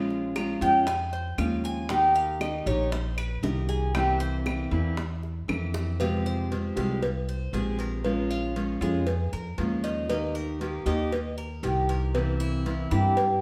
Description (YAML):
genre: latin, Cuban son and guajira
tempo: 117 BPM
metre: 4/4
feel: straight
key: F minor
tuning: A4 = 436 Hz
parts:
  - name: fingerpicked steel-string acoustic guitar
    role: accompaniment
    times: 0.0-13.2 s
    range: C3 to G4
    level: -33 LUFS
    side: equal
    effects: none
  - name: upright bass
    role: bass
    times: 0.0-13.4 s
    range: Bb1 to G2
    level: -32 LUFS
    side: equal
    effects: none
  - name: bongos and cowbell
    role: percussion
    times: 0.1-13.4 s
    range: none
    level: -38 LUFS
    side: equal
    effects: none
  - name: Cuban tres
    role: arpeggios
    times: 0.4-13.4 s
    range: Eb4 to Bb5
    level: -31 LUFS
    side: equal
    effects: none
  - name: claves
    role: percussion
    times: 0.4-5.7 s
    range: none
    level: -41 LUFS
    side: equal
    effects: none
room: wet large studio reverb, RT60 1.2 s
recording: band playing live in one room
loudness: -27 LUFS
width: mono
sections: 0.0-6.0 A section; 6.0-13.4 B section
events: Cuban tres solo 0.0-6.0; drum fill 5.7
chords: 0.0 Bbm7; 1.9 Eb; 4.0 C7; 6.0 Fmadd9; 8.1 Bbm7; 10.1 Eb; 12.1 C7